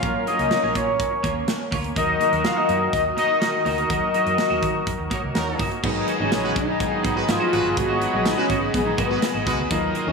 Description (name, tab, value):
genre	1980s-style pop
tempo	124 BPM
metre	4/4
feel	straight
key	unclear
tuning	A4 = 442 Hz
part	fat analog lead	melody	0.0-10.1 s	B3 to E#5	-23 LUFS	left 2 dB	analog delay
part	warm baby grand piano	accompaniment	0.0-10.1 s	E#3 to A#4	-29 LUFS	left 2 dB	lush chorus
part	brassy analog pad	sustained chords	0.0-10.1 s	D#3 to D#6	-29 LUFS	left 1 dB	chorus
part	twelve-string electric guitar	riff	0.0-10.1 s	F#3 to F#4	-29 LUFS	right 3 dB	ensemble chorus, analog delay
part	vintage muted fingered electric bass	bass	0.0-10.1 s	G1 to D#3	-30 LUFS	right 1 dB	none
part	modern studio drum kit	drums	0.0-10.1 s	crash cymbal, hi-hat, kick drum, snare drum, tambourine	-28 LUFS	right 1 dB	none
part	warm horn section	stabs	5.1-9.6 s	F#3 to B4	-30 LUFS	right 1 dB	none
part	high-gain distorted guitar	accompaniment	5.8-10.1 s	D#3 to G#4	-32 LUFS	equal	distortion, lush chorus
room	wet plate reverb, RT60 1.7 s, studio reverb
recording	dreamy mix soaked in reverb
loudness	-19 LUFS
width	side -4 dB against mid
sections	0.0-5.8 A section; 5.8-10.1 B section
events	band accent 3.9-5.8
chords	0.0 F#maj7; 2.0 D#m; 5.8 G#m7